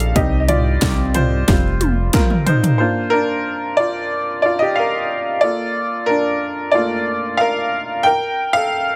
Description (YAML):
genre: piano-driven pop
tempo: 91 BPM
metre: 4/4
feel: straight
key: Bb major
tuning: A4 = 439 Hz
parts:
  - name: clear upright piano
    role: accompaniment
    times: 0.0-9.0 s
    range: G3 to G5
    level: -20 LUFS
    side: equal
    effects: none
  - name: chorused synth bass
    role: bass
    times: 0.0-2.1 s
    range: F1 to C2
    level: -20 LUFS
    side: equal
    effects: none
  - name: house drum kit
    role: drums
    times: 0.0-2.8 s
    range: hi-hat, kick drum, snare drum, toms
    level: -20 LUFS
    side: equal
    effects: none
  - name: group handclap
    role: percussion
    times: 0.8-2.3 s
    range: none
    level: -32 LUFS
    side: equal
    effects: none
room: light reverb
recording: none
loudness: -18 LUFS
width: mono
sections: 0.0-2.8 A section; 2.8-9.0 A section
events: upright piano solo 0.0-2.8, 2.8-9.0; drum fill 1.5-2.8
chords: 0.2 Cm; 1.5 Fsus2; 2.8 Bb; 5.4 Bbmaj7; 8.1 Ebadd9 (rootless)